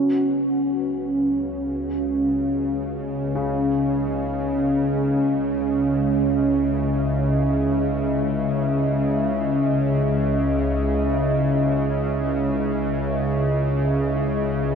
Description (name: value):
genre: dark ambient drone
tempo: free time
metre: none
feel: none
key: C# minor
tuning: A4 = 440 Hz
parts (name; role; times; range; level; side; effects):
- deep dark ambient pad; sustained chords; 0.0-14.8 s; C#4 to E5; -23 LUFS; right 1 dB; chorus, built-in reverb
- bowed-like drone; drone; 1.1-14.8 s; C#2 to C#3; -22 LUFS; left 1 dB; built-in reverb
- warm grand piano; arpeggios; 3.4-14.8 s; C#3; -32 LUFS; left 2 dB; ping-pong delay
room: wet huge ambient reverb, RT60 7.8 s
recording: dark, warm production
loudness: -20 LUFS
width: side -6 dB against mid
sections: 0.0-14.8 A section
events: none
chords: 0.0 C#madd9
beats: free time